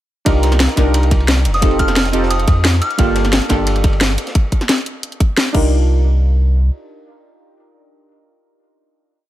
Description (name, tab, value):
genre	liquid drum and bass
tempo	176 BPM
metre	4/4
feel	straight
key	C dorian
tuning	A4 = 440 Hz
part	deep mellow chord stab	accompaniment	0.2-9.3 s	Bb3 to Bb4	-20 LUFS	right 1 dB	chorus, digital delay
part	warm sub bass	bass	0.3-6.7 s	F1 to F2	-15 LUFS	equal	none
part	crunchy breakbeat drum kit	drums	0.3-4.3 s	ride cymbal, snare drum	-28 LUFS	equal	high-pass filter on cymbals, studio ambience, high-pass filter on snare, high-pass filter on room
part	electronic kick drum	drums	0.3-5.6 s	none	-15 LUFS	equal	overdrive, studio ambience
part	garage drum kit	drums	0.3-5.6 s	crash cymbal, hi-hat, snare drum	-18 LUFS	left 1 dB	overdrive, studio ambience
part	soft synth bell	melody	1.5-3.1 s	Eb6 to F6	-22 LUFS	equal	chorus, digital delay
room	digital ambience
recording	none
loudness	-12 LUFS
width	side -14 dB against mid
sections	0.3-5.7 drop; 5.7-8.4 final hit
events	drop 0.3-5.7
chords	0.3 Cm11; 1.5 F9; 2.8 Gm9; 4.2 N.C.; 5.5 Cm11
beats	| 0.26 0.60 0.94 1.28 | 1.62 1.97 2.31 2.65 | 2.99 3.33 3.67 4.01 | 4.35 4.69 5.03 5.37 | 5.71 6.06 6.40 6.74 | 7.08 7.42 7.76 8.10